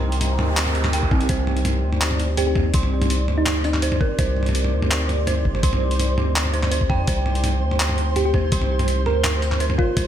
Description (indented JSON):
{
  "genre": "half-time drum and bass",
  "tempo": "166 BPM",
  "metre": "4/4",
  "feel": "half-time",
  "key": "C minor",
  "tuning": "A4 = 442 Hz",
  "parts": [
    { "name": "dark analog pad", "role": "sustained chords", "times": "0.0-10.1 s", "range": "C4 to D5", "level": "-30 LUFS", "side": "equal", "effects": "chorus, sidechain pumping" },
    { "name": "dark detuned synth bell", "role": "arpeggios", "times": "0.0-10.1 s", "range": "C4 to C6", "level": "-29 LUFS", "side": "right 4 dB", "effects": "chorus, tape echo" },
    { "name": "long sustained 808-style bass", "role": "bass", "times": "0.0-10.1 s", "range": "G1 to F2", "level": "-22 LUFS", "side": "equal", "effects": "none" },
    { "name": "noise sweep", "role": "sound effects", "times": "0.1-1.3 s", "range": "none", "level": "-31 LUFS", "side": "right 6 dB", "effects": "none" },
    { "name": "boom bap sampler-style drum kit", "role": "drums", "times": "0.1-10.0 s", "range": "handclaps, hi-hat, toms", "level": "-24 LUFS", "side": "equal", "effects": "none" },
    { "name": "electronic kick drum", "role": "drums", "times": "1.0-10.0 s", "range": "none", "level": "-22 LUFS", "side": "equal", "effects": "none" },
    { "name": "flickering grainy texture", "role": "texture", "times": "1.8-10.1 s", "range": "C5", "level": "-32 LUFS", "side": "right 3 dB", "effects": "built-in reverb" },
    { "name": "thumb-piano-like synth pluck", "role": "melody", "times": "2.4-3.9, 8.2-10.1 s", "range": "Eb4 to Bb4", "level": "-26 LUFS", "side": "right 1 dB", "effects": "chorus, dub echo" }
  ],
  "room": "little or no reverb",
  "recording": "none",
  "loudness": "-18 LUFS",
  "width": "side -10 dB against mid",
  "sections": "0.0-10.1 A section",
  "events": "noise sweep 0.1-1.3",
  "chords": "0.0 Cmadd9"
}